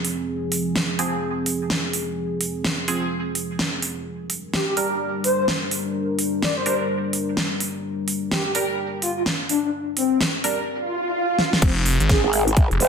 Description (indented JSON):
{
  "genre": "bass house",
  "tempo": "127 BPM",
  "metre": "4/4",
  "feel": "swing 62% on 16ths",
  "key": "F dorian",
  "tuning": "A4 = 440 Hz",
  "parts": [
    { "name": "dark analog pad", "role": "sustained chords", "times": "0.0-10.6 s", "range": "F3 to Bb4", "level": "-27 LUFS", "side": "left 1 dB", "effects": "chorus, vintage 12-bit sampler grit, sidechain pumping" },
    { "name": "big-room dance drum kit", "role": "drums", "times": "0.0-12.9 s", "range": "crash cymbal, hi-hat, snare drum", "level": "-24 LUFS", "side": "right 1 dB", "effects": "none" },
    { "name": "band-passed chord stab", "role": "stabs", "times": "1.0-10.6 s", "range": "F3 to Bb4", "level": "-28 LUFS", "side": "right 2 dB", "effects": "phaser, wide subtle chorus, cassette tape, sidechain pumping, tape echo" },
    { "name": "breathy flute-like synth lead", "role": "melody", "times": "4.5-12.9 s", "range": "C4 to D5", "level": "-24 LUFS", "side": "left 1 dB", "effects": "analog chorus, tape echo" },
    { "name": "swell", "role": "sound effects", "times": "10.8-11.6 s", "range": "none", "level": "-24 LUFS", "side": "right 1 dB", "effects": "none" },
    { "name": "phased detuned saw bass", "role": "bass", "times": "11.6-12.8 s", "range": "F1 to Ab1", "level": "-20 LUFS", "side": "equal", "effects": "phaser, tube saturation, sidechain pumping" },
    { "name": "electronic kick drum", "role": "drums", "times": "11.6-12.7 s", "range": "none", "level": "-17 LUFS", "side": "equal", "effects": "none" },
    { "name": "growl bass", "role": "bass", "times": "12.2-12.9 s", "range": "F1 to Ab1", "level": "-21 LUFS", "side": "equal", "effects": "chorus, tube saturation, sidechain pumping" }
  ],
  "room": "moderate digital room reverb, RT60 1.1 s",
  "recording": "dense, heavily limited modern master",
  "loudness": "-20 LUFS",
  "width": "side -6 dB against mid",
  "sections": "0.0-11.6 A section; 11.6-12.9 B section",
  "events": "swell 10.8-11.6; drum fill 11.4; drop 11.6-12.9",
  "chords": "0.0 Fm; 4.1 Gm; 11.6 Fm"
}